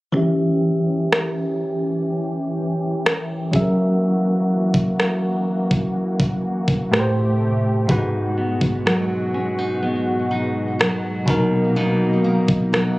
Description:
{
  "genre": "contemporary R&B",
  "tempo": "62 BPM",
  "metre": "4/4",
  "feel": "straight",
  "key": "unclear",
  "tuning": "A4 = 440 Hz",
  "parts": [
    { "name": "bell-like tine electric piano", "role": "accompaniment", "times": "0.1-13.0 s", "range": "G#2 to E5", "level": "-20 LUFS", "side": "equal", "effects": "fast stereo tremolo, low-pass filter" },
    { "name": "lush unison pad", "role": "sustained chords", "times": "0.1-13.0 s", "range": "B2 to G4", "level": "-26 LUFS", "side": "equal", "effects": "chorus, low-pass filter" },
    { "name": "trap drum kit", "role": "drums", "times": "1.1-13.0 s", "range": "kick drum, rim click", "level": "-19 LUFS", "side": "equal", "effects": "overdrive, vintage 12-bit sampler grit" },
    { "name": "nylon-string guitar", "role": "arpeggios", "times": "7.9-13.0 s", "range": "G#2 to D#4", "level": "-23 LUFS", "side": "equal", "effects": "low-pass filter, ping-pong delay" }
  ],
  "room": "little or no reverb",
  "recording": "recorded on a phone in the room, club reverb",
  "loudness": "-18 LUFS",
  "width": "side -20 dB against mid",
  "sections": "0.1-13.0 A section",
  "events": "filter sweep 0.1-13.0",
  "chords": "0.1 Em6; 3.5 F#7; 6.9 Am7; 7.9 G#m7; 11.3 Bmaj7",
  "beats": "| 0.15 1.11 2.08 3.05 | 4.02 4.99 5.95 6.92 | 7.89 8.86 9.82 10.79 | 11.76 12.73"
}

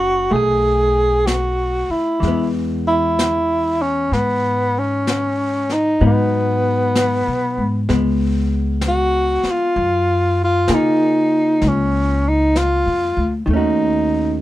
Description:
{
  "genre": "jazz ballad",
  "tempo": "64 BPM",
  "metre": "4/4",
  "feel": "swing 66% on 8ths",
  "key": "unclear",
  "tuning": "A4 = 440 Hz",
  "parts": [
    { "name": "breathy tenor saxophone", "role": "melody", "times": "0.0-14.4 s", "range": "B3 to G#4", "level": "-17 LUFS", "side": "equal", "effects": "none" },
    { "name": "vintage hollow-body jazz guitar", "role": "accompaniment", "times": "0.0-14.4 s", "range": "D#3 to A4", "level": "-23 LUFS", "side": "left 1 dB", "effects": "none" },
    { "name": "upright bass", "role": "bass", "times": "0.0-14.4 s", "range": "F#1 to C#3", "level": "-21 LUFS", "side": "equal", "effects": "none" },
    { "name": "jazz brush drum kit", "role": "drums", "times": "0.3-14.4 s", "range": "brushed snare drum, hi-hat, snare drum", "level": "-27 LUFS", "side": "left 2 dB", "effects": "none" }
  ],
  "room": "light reverb",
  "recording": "minimal, uncompressed stereo recording",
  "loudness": "-15 LUFS",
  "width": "side -15 dB against mid",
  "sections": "0.0-14.4 A section",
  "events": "none",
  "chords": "0.3 F#madd9/B; 2.2 E; 6.0 G#m7; 7.9 C#5; 9.7 F#maj9; 13.5 D#m7b5",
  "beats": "0.32 1.27 | 2.22 3.18 4.12 5.07 | 6.01 6.95 7.88 8.81 | 9.75 10.68 11.62 12.55 | 13.49"
}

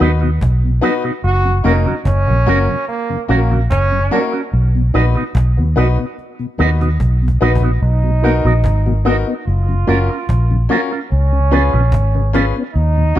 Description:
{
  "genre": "roots reggae",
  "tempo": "73 BPM",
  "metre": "4/4",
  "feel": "straight",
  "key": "F# major",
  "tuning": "A4 = 440 Hz",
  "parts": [
    { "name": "electric guitar with an envelope filter", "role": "accompaniment", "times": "0.0-13.2 s", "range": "C#4 to B4", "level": "-22 LUFS", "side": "right 6 dB", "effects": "tape echo" },
    { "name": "mellow tonewheel organ", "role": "accompaniment", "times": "0.0-13.2 s", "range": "D#2 to E#4", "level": "-23 LUFS", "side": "left 3 dB", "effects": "chorus vibrato, slow rotary speaker" },
    { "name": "bright upright piano", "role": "stabs", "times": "0.0-13.2 s", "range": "A#3 to B4", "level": "-23 LUFS", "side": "left 6 dB", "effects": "none" },
    { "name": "vintage muted fingered electric bass", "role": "bass", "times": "0.0-13.2 s", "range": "E#1 to D#2", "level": "-14 LUFS", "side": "equal", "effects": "none" },
    { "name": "cajon", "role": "drums", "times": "0.0-13.2 s", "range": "none", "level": "-23 LUFS", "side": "equal", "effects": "none" },
    { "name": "brilliant trombone", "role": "second line", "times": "1.2-13.2 s", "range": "A#3 to F#4", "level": "-21 LUFS", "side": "right 3 dB", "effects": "tape echo" }
  ],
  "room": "little or no reverb",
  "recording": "dark, warm production",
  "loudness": "-13 LUFS",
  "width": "side -13 dB against mid",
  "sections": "0.0-7.8 A section; 7.8-13.2 B section",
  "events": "drum fill 7.0-7.8",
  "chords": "0.0 B; 1.2 F#; 4.5 B; 7.8 Bmaj7; 9.5 F#maj7; 11.1 C#7",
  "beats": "0.41 | 1.24 2.06 2.88 3.71 | 4.53 5.35 6.18 7.00 | 7.82 8.64 9.46 10.29 | 11.11 11.93 12.75"
}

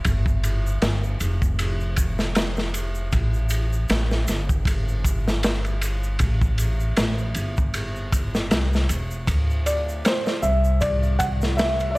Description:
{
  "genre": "trip hop",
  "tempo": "78 BPM",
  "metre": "4/4",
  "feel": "swing 56% on 16ths",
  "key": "unclear",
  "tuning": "A4 = 441 Hz",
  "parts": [
    { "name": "crunchy breakbeat drum kit", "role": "drums", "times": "0.0-12.0 s", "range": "kick drum, ride cymbal, snare drum", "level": "-24 LUFS", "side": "equal", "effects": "none" },
    { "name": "upright bass", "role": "bass", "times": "0.1-12.0 s", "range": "E1 to D2", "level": "-23 LUFS", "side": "equal", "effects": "none" },
    { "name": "egg shaker", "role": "percussion", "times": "0.1-11.9 s", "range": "none", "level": "-39 LUFS", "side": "right 1 dB", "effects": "none" },
    { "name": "felt-muted upright piano", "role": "melody", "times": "9.7-12.0 s", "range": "C5 to F#5", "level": "-24 LUFS", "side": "equal", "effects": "dub echo" }
  ],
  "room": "studio reverb",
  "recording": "vinyl crackle",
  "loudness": "-20 LUFS",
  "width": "side -22 dB against mid",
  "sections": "0.0-12.0 A section",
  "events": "none",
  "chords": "0.0 Fsus2; 3.1 A7(no3); 9.3 D7(no3)",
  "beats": "| 0.04 0.81 1.58 2.35 | 3.12 3.89 4.66 5.43 | 6.20 6.97 7.74 8.51 | 9.28 10.04 10.81 11.58"
}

